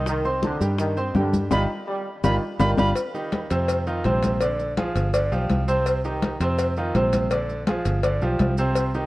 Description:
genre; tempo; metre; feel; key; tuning
latin, salsa; 166 BPM; 4/4; straight; C minor; A4 = 440 Hz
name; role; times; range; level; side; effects
bright grand piano; accompaniment; 0.0-9.1 s; C3 to C6; -25 LUFS; right 1 dB; none
fingered electric bass; bass; 0.0-9.1 s; G1 to G2; -24 LUFS; equal; none
bright trombone section; second line; 0.1-2.8 s; D3 to G3; -30 LUFS; equal; none
bongos and cowbell; percussion; 0.1-8.9 s; none; -29 LUFS; left 3 dB; none
congas; percussion; 0.1-9.1 s; none; -28 LUFS; left 2 dB; none
maracas; percussion; 0.1-9.1 s; none; -44 LUFS; right 5 dB; none
bright concert flute; melody; 1.5-2.9 s; B5; -30 LUFS; right 1 dB; none
room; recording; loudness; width
light reverb; worn, warbling old tape, cassette tape, warbly pitch drift; -20 LUFS; side -18 dB against mid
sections
0.0-3.0 A section; 3.0-9.1 B section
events
band accent 1.5-3.0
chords
0.1 Cm; 1.5 G7b13; 3.0 Cm; 3.7 F5; 4.4 Bb7; 5.1 G7; 5.9 Cm; 6.6 F5; 7.3 Bb7; 8.0 G7

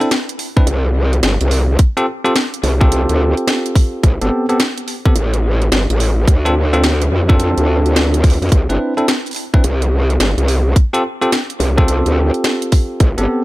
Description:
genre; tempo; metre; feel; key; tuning
glitch hop; 107 BPM; 4/4; swing 64% on 16ths; unclear; A4 = 442 Hz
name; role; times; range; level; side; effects
bell-like tine electric piano; stabs; 0.0-13.4 s; B3 to B4; -18 LUFS; equal; sidechain pumping, digital delay
drum and bass drum kit; drums; 0.0-13.3 s; hi-hat, rim click, snare drum; -19 LUFS; equal; overdrive
electronic kick drum; drums; 0.6-13.1 s; none; -11 LUFS; equal; overdrive
growl bass; bass; 0.7-13.3 s; G1 to F2; -14 LUFS; equal; chorus, tube saturation
room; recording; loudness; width
little or no reverb; none; -12 LUFS; side -18 dB against mid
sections
0.0-13.4 A section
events
none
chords
0.0 N.C.; 1.8 G9sus4; 4.0 Am9; 6.3 Dm7; 8.5 Cmaj9; 10.8 G9sus4

